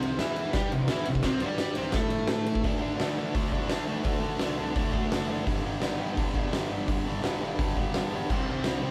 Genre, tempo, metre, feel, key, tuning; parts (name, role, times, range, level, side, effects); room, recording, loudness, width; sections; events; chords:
garage rock duo or trio; 170 BPM; 4/4; straight; A4 = 441 Hz
thick fuzz guitar; riff; 0.0-8.9 s; G2 to A4; -32 LUFS; equal; distortion
fuzz picked electric bass; bass; 0.0-8.9 s; E1 to A2; -39 LUFS; equal; overdrive
oversized low-tuned drum kit; drums; 0.0-8.7 s; crash cymbal, hi-hat, kick drum, ride cymbal, snare drum; -32 LUFS; equal
moderate small room reverb, RT60 0.5 s; band playing live in one room; -29 LUFS; mono
0.0-2.6 A section; 2.6-8.9 B section
0.0 C5; 2.6 D5; 5.5 G5; 8.3 C5